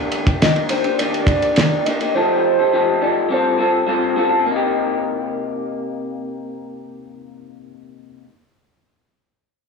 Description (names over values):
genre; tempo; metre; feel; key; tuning
indie pop, bedroom pop; 104 BPM; 4/4; straight; C dorian; A4 = 440 Hz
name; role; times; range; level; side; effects
electric guitar through a small old amp; accompaniment; 0.0-8.3 s; C3 to A4; -20 LUFS; left 2 dB; wide subtle chorus, vibrato effect
cloth-damped thuddy drum kit; drums; 0.1-2.1 s; kick drum, ride cymbal, snare drum; -19 LUFS; right 1 dB; none
warbly nostalgic lead; melody; 0.4-3.9 s; C5 to Eb5; -20 LUFS; equal; lush chorus, tape echo
room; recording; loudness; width
moderate small room reverb, RT60 0.5 s; small room ambience; -16 LUFS; side -4 dB against mid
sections
0.0-4.4 A section; 4.4-6.8 B section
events
none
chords
0.0 Ebmaj7; 2.1 F9; 3.3 G9sus4; 4.4 Cm7